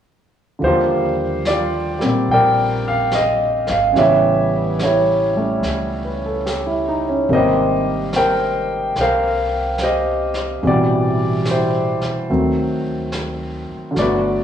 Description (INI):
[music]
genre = jazz ballad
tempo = 72 BPM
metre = 4/4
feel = swing 69% on 8ths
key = unclear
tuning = A4 = 440 Hz
[part]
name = warm grand piano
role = accompaniment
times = 0.6-14.4 s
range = Cb3 to G5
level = -16 LUFS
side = equal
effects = plate reverb
[part]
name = upright bass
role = bass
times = 0.6-14.4 s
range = G1 to Bb2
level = -27 LUFS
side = equal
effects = none
[part]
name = vintage brush drum kit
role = drums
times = 0.6-14.4 s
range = brushed snare drum, hi-hat, snare drum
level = -31 LUFS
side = equal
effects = cassette tape
[sound]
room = wet booth ambience, RT60 0.3 s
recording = home recording on cassette, studio reverb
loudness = -16 LUFS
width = side -9 dB against mid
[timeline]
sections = 0.6-14.4 A section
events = none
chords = 0.6 Ebmaj9; 4.0 A9; 7.3 Abmaj9; 10.6 Am7; 12.3 D7b9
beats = | 0.61 1.45 2.28 3.12 | 3.95 4.79 5.62 6.45 | 7.29 8.12 8.95 9.79 | 10.62 11.45 12.29 13.12 | 13.96